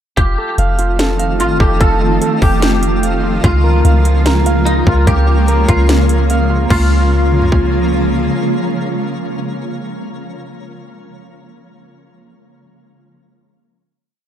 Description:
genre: hip hop, atmospheric cloud-rap.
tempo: 147 BPM.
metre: 4/4.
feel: half-time.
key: Db lydian.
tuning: A4 = 440 Hz.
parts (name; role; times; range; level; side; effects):
clean electric guitar; melody; 0.2-7.9 s; Eb4 to A4; -21 LUFS; left 2 dB; ensemble chorus, digital delay.
granular cloud pad; sustained chords; 0.7-9.9 s; Db3 to F4; -18 LUFS; right 1 dB; built-in reverb, sidechain pumping.
Celtic harp; arpeggios; 0.2-9.9 s; Bb3 to F5; -22 LUFS; right 3 dB; digital delay.
soft 808-style bass; bass; 0.2-8.3 s; F1 to Db2; -14 LUFS; equal; none.
trap drum kit; drums; 0.2-7.6 s; crash cymbal, hi-hat, kick drum, snare drum, toms; -16 LUFS; equal; overdrive.
twinkling granular texture; texture; 0.7-9.9 s; Db4 to F5; -28 LUFS; equal; built-in reverb.
room: little or no reverb.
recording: none.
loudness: -11 LUFS.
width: side -10 dB against mid.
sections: 0.2-6.7 verse; 6.7-10.0 final chord.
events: none.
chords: 0.2 F7; 3.4 Db6.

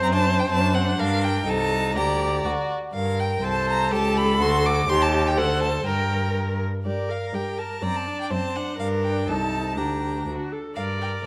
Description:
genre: quick classical-period movement for string quartet.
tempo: 123 BPM.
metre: 2/4.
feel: straight.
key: G minor.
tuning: A4 = 440 Hz.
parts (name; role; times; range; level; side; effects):
clear violin; melody; 0.0-11.1 s; D5 to D6; -29 LUFS; equal; none.
clear violin; second line; 0.0-11.3 s; C4 to D5; -31 LUFS; equal; none.
clear viola; accompaniment; 0.0-11.3 s; C4 to D5; -30 LUFS; equal; none.
clear cello; bass; 0.0-11.2 s; C2 to G2; -28 LUFS; equal; none.
room: moderate recital hall reverb, RT60 1.5 s.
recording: none.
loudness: -24 LUFS.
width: mono.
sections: 0.0-6.9 A section; 6.9-11.3 A section.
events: none.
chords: 0.0 D7/F#; 1.0 Gm; 1.5 Adim/C; 2.0 Gm/D; 2.9 Gm; 3.4 Am/C; 3.9 A7/C#; 4.4 D; 4.9 Am7b5/Eb; 5.4 D7; 5.9 Gm; 7.8 D7/F#; 8.8 Gm; 9.3 Adim/C; 9.8 Gm/D; 10.3 D; 10.8 Gm.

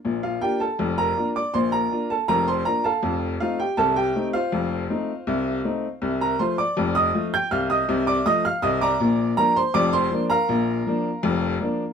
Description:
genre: ragtime piano.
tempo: 80 BPM.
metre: 2/4.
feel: straight.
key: Bb major.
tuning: A4 = 440 Hz.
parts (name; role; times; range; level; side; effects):
clear upright piano; solo; 0.0-11.9 s; F1 to G6; -20 LUFS; equal; none.
room: light reverb.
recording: close, detailed microphones.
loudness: -20 LUFS.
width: side -7 dB against mid.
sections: 0.0-11.9 A section.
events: none.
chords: 0.0 Bb; 3.0 F7; 9.0 Bb.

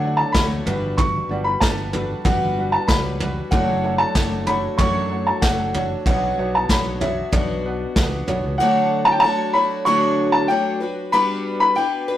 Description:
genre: indie folk with a building arrangement.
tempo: 94 BPM.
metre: 4/4.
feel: straight.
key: D major.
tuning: A4 = 442 Hz.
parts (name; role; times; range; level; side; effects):
dark upright piano; melody; 0.0-12.2 s; D5 to C#6; -20 LUFS; equal; none.
felt-muted upright piano; accompaniment; 0.0-8.6 s; F#1 to E5; -30 LUFS; right 1 dB; none.
picked twelve-string acoustic guitar; accompaniment; 0.0-12.2 s; F#2 to C#5; -24 LUFS; left 1 dB; none.
fingered electric bass; bass; 0.0-8.6 s; F#1 to D3; -27 LUFS; equal; none.
vintage brush drum kit; drums; 0.3-8.4 s; kick drum, snare drum, toms; -21 LUFS; equal; none.
room: moderate stone room reverb, RT60 1.1 s.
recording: rough rehearsal-room recording, warm saturation.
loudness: -17 LUFS.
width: side -12 dB against mid.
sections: 0.0-8.6 A section; 8.6-12.2 A section.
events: none.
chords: 0.0 Dmaj7; 0.7 Gmaj7; 3.5 Dmaj7/F#; 6.1 Bmadd9; 8.6 Dmaj7; 10.8 Gmaj7.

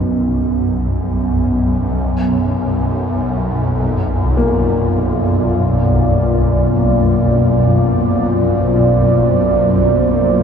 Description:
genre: dark ambient drone.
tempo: free time.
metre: none.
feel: none.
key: unclear.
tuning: A4 = 440 Hz.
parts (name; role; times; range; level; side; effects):
deep dark ambient pad; sustained chords; 0.0-10.4 s; B2 to D#5; -15 LUFS; equal; chorus, built-in reverb.
swarming drone; drone; 0.0-10.4 s; B1 to F#2; -16 LUFS; equal; built-in reverb.
dark baby grand piano; arpeggios; 4.4-10.4 s; A#3; -25 LUFS; left 4 dB; ping-pong delay.
room: wet cathedral reverb, RT60 6.1 s.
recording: in a vast, echoing space.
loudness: -13 LUFS.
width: side -7 dB against mid.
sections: 0.0-10.4 A section.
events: none.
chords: 0.0 B; 2.0 A#/B.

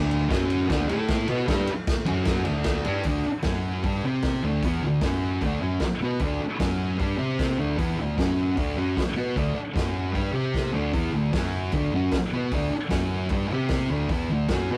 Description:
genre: garage rock duo or trio.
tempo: 152 BPM.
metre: 4/4.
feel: straight.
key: D major.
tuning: A4 = 440 Hz.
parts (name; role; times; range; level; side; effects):
thick fuzz guitar; riff; 0.0-14.8 s; D3 to C5; -28 LUFS; equal; distortion.
hollow-body short-scale picked electric bass; bass; 0.0-14.8 s; D2 to C3; -32 LUFS; equal; none.
vintage drum kit; drums; 0.1-14.6 s; hi-hat, kick drum, ride cymbal, snare drum; -31 LUFS; equal; none.
room: moderate studio reverb, RT60 0.6 s.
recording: rough rehearsal-room recording, warm saturation.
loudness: -26 LUFS.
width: mono.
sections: 0.0-3.1 A section; 3.1-14.8 B section.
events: none.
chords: 0.3 F#5; 0.7 D5; 0.9 A5; 1.3 D; 2.1 F#5; 2.5 D5; 3.5 F#5; 3.9 G5; 4.1 C5; 4.4 D5; 5.0 F#5; 5.4 D; 6.6 F#5; 7.0 G5; 7.2 C5; 7.6 D5; 8.2 F#5; 8.6 D; 9.8 F#5; 10.2 G5; 10.4 C5; 10.8 D5; 11.3 F#5; 11.7 D; 12.9 F#5; 13.3 G5; 13.5 C5; 13.9 D.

